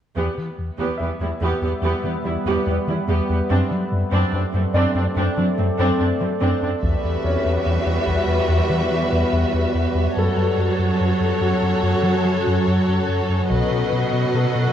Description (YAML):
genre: cinematic, hybrid orchestral and electronic film score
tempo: 72 BPM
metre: 4/4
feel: straight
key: unclear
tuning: A4 = 441 Hz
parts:
  - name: rich symphonic viola section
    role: accompaniment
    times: 0.2-14.7 s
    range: F#3 to G4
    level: -25 LUFS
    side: right 2 dB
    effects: none
  - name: deep dark ambient pad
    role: sustained chords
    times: 1.0-14.7 s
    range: F#3 to F#5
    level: -25 LUFS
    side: equal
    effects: chorus, built-in reverb
  - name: smooth gliding synth bass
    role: riff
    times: 0.2-14.7 s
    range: E2 to F#3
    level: -22 LUFS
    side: left 1 dB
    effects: none
  - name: rich symphonic cello section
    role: bass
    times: 0.2-14.7 s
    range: E2 to B2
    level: -26 LUFS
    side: right 2 dB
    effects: none
  - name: bright baby grand piano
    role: texture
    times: 1.0-14.7 s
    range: A3 to E5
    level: -32 LUFS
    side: left 2 dB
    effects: tape echo
  - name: rich symphonic violin section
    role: second line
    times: 6.8-14.7 s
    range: A4 to E5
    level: -25 LUFS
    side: left 2 dB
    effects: none
  - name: solo taiko drums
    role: drums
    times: 6.8-8.5, 13.5-14.7 s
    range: none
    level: -28 LUFS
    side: equal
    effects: none
room: moderate scoring stage reverb, RT60 1.9 s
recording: worn, warbling old tape, cassette tape, warbly pitch drift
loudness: -18 LUFS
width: side -10 dB against mid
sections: 0.2-6.8 A section; 6.8-14.7 B section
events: build-up 6.8-14.7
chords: 0.2 Em; 3.5 D7/F#; 6.8 Emadd9; 10.2 F#m; 13.5 B